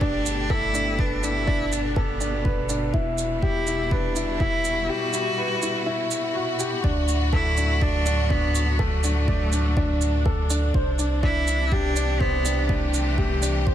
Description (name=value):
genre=piano and strings electronica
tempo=123 BPM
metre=4/4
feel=straight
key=E minor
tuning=A4 = 440 Hz
part: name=clear cello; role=melody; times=0.0-13.7 s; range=A3 to F#4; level=-28 LUFS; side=equal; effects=tape echo
part: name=clear symphonic string section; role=sustained chords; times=0.0-13.7 s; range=A2 to G4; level=-30 LUFS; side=equal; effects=sidechain pumping
part: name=clear upright piano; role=riff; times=0.0-13.7 s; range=D4 to D5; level=-27 LUFS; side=equal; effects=tape echo
part: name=warm sub bass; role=bass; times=0.0-13.7 s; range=E1 to D2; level=-25 LUFS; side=equal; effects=tube saturation, sidechain pumping
part: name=electronic kick drum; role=drums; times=0.0-13.7 s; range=none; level=-25 LUFS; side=equal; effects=none
part: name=shaker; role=drums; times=0.3-13.5 s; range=none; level=-31 LUFS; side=right 5 dB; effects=none
room=light reverb, studio reverb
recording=none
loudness=-21 LUFS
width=side -11 dB against mid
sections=0.0-13.7 A section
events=none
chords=0.0 Gadd9; 2.9 Emadd9; 6.8 D; 10.7 Cadd9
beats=0.01 0.50 | 0.99 1.48 1.96 2.45 | 2.94 3.43 3.92 4.40 | 4.89 5.38 5.87 6.35 | 6.84 7.33 7.82 8.30 | 8.79 9.28 9.77 10.26 | 10.74 11.23 11.72 12.21 | 12.70 13.18 13.67